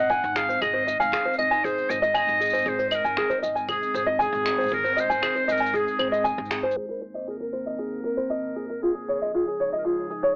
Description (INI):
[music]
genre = folktronica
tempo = 117 BPM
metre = 4/4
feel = straight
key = Ab major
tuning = A4 = 440 Hz
[part]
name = bright clarinet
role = melody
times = 0.0-10.4 s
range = Ab4 to Gb5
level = -29 LUFS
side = equal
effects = cassette tape, analog delay
[part]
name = warbly tape-like pad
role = sustained chords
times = 0.0-10.4 s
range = Db2 to Eb4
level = -39 LUFS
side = equal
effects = chorus, built-in reverb, cassette tape
[part]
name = tenor ukulele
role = arpeggios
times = 0.0-10.4 s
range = F4 to Ab5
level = -28 LUFS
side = equal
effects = vintage 12-bit sampler grit, low-pass filter, cassette tape
[part]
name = upright bass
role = bass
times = 0.0-6.7 s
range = Ab1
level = -40 LUFS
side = equal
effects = none
[part]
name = electronic shaker, finger snaps and claves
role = drums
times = 0.1-10.3 s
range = none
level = -35 LUFS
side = equal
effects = cassette tape
[part]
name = kick drum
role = drums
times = 0.1-6.4 s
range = none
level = -49 LUFS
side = equal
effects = none
[sound]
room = moderate studio reverb, RT60 0.6 s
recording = home recording on cassette, low-pass filter, AM radio sound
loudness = -25 LUFS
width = mono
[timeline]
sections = 0.0-6.8 A section; 6.8-10.4 B section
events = band accent 6.5; filter sweep on ukulele 6.8-10.4; filter sweep 6.8-10.4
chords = 0.0 Ab; 6.8 Abadd9; 8.8 Dbadd9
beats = 0.10 | 0.62 1.13 1.64 2.15 | 2.67 3.18 3.69 4.21 | 4.72 5.23 5.74 6.26 | 6.77 7.28 7.79 8.31 | 8.82 9.33 9.85